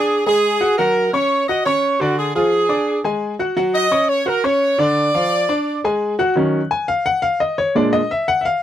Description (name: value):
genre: latin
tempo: 172 BPM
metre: 4/4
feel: straight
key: Eb minor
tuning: A4 = 441 Hz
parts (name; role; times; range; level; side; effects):
- bright horn section; melody; 0.0-5.8 s; F#4 to Eb5; -16 LUFS; right 1 dB; none
- bright upright piano; accompaniment; 0.0-8.6 s; Bb2 to Gb6; -18 LUFS; left 1 dB; none
room: light reverb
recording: dry, close 1970s-style studio recording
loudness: -15 LUFS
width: side -11 dB against mid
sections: 0.0-6.4 A section; 6.4-8.6 B section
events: upright piano solo 6.4-8.6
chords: 0.0 D(b5, no3); 0.8 Dmaj7#5; 2.2 Ddim; 3.6 Ebm7; 5.0 Ddim; 6.4 Ebm7; 7.8 Bb7